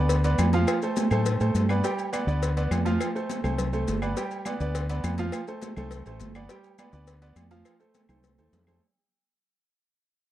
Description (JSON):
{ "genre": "latin, salsa", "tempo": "206 BPM", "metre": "4/4", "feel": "straight", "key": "unclear", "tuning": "A4 = 439 Hz", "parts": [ { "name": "bright baby grand piano", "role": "accompaniment", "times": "0.0-8.8 s", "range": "F3 to G5", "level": "-31 LUFS", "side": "right 3 dB", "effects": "none" }, { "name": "fingered electric bass", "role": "bass", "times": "0.0-8.8 s", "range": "G1 to A2", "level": "-26 LUFS", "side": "equal", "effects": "none" }, { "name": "agogo bells and timbales", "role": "percussion", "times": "0.1-8.8 s", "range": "none", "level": "-38 LUFS", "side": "right 5 dB", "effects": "none" }, { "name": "congas", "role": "percussion", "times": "0.1-8.7 s", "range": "none", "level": "-32 LUFS", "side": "right 1 dB", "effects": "none" }, { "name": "cowbell", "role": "percussion", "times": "0.1-8.7 s", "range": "none", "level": "-35 LUFS", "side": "left 6 dB", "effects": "none" }, { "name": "maracas", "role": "percussion", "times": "0.1-8.8 s", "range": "none", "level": "-44 LUFS", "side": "left 10 dB", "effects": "none" }, { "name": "claves", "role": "percussion", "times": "0.4-8.8 s", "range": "none", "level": "-40 LUFS", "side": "left 5 dB", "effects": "none" } ], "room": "little or no reverb", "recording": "dry, close 1970s-style studio recording", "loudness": "-24 LUFS", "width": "side -13 dB against mid", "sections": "0.0-8.8 A section", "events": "fade-out 0.0-8.8; drum fill 8.1-8.8", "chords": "0.0 G (rootless); 0.7 F; 1.8 G; 3.0 F; 4.2 G; 5.3 F; 6.5 G; 7.7 F" }